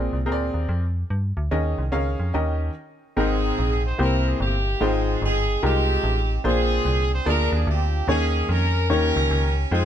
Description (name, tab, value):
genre	uptempo gospel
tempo	146 BPM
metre	4/4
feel	swing 64% on 8ths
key	unclear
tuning	A4 = 440 Hz
part	clear concert grand piano	accompaniment	0.0-9.8 s	Ab2 to G5	-25 LUFS	left 1 dB	none
part	metallic FM bass	bass	0.0-9.8 s	G1 to G2	-23 LUFS	equal	none
part	warm horn section	melody	3.2-9.8 s	Bb3 to C5	-25 LUFS	right 1 dB	none
room	light reverb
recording	none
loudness	-20 LUFS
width	side -10 dB against mid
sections	0.0-3.2 A section; 3.2-9.8 B section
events	stop 2.8-3.2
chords	0.0 Bb9; 1.5 Eb7sus4; 2.3 Eb7; 3.2 Abmaj9; 4.0 C7; 4.8 Fm9; 6.4 Bb9; 8.1 Eb7sus4; 8.9 Eb7